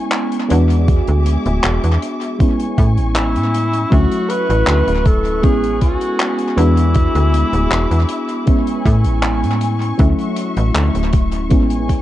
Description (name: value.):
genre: vaporwave.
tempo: 79 BPM.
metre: 4/4.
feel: straight.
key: A major.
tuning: A4 = 436 Hz.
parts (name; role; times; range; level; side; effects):
mellow FM electric piano; accompaniment; 0.0-12.0 s; F#3 to F#4; -20 LUFS; left 1 dB; wide subtle chorus, tape echo.
dark studio string section; sustained chords; 0.0-12.0 s; F#4 to D6; -28 LUFS; left 2 dB; none.
modern studio drum kit; drums; 0.1-12.0 s; handclaps, hi-hat; -24 LUFS; equal; vintage 12-bit sampler grit, tape echo.
slap-like FM bass; bass; 0.5-12.0 s; D1 to A2; -16 LUFS; equal; none.
electronic kick drum; drums; 0.9-12.0 s; none; -15 LUFS; equal; overdrive, vintage 12-bit sampler grit.
warm alto saxophone; melody; 3.2-8.9 s; E4 to B4; -20 LUFS; equal; tape echo.
room: light reverb, studio reverb.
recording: echo-heavy mix, cassette tape, nothing above 10.5 kHz.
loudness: -13 LUFS.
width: side -14 dB against mid.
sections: 0.0-12.0 A section.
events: none.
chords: 0.0 Amaj7 (rootless); 0.5 E7; 2.4 Amaj7; 3.9 Dmaj9; 5.4 Amaj7; 6.6 E7; 8.5 Amaj7; 10.0 Dmaj9; 11.5 Amaj7.